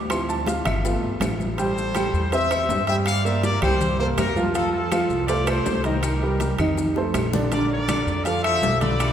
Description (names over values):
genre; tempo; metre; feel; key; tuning
latin, salsa; 162 BPM; 4/4; straight; unclear; A4 = 440 Hz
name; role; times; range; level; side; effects
warm upright piano; accompaniment; 0.0-9.1 s; D3 to D6; -24 LUFS; right 2 dB; none
upright bass; bass; 0.0-9.1 s; G1 to G2; -26 LUFS; equal; none
bongos; percussion; 0.1-9.1 s; none; -34 LUFS; left 3 dB; none
claves; percussion; 0.1-9.1 s; none; -38 LUFS; left 2 dB; none
congas; percussion; 0.1-9.1 s; none; -31 LUFS; left 1 dB; none
maracas; percussion; 0.1-9.1 s; none; -40 LUFS; left 7 dB; none
timbales; percussion; 0.1-9.1 s; none; -32 LUFS; right 3 dB; none
bright trumpet section; melody; 1.6-9.1 s; F4 to F5; -25 LUFS; left 2 dB; none
room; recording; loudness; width
wet church reverb, RT60 3.2 s; recorded in a church or concert hall; -20 LUFS; side -9 dB against mid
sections
0.0-1.6 A section; 1.6-9.1 B section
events
upright piano solo 0.0-1.6; drum fill 7.0-7.5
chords
0.1 Dm7; 0.8 G7; 1.6 Am7; 3.1 Gm; 3.8 C5; 4.5 F; 6.0 Cm7; 6.8 F7; 7.5 Bbmaj7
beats
| 0.11 0.48 0.85 1.22 | 1.59 1.96 2.33 2.70 | 3.07 3.44 3.81 4.18 | 4.55 4.92 5.29 5.66 | 6.03 6.40 6.78 7.15 | 7.52 7.89 8.26 8.63 | 9.00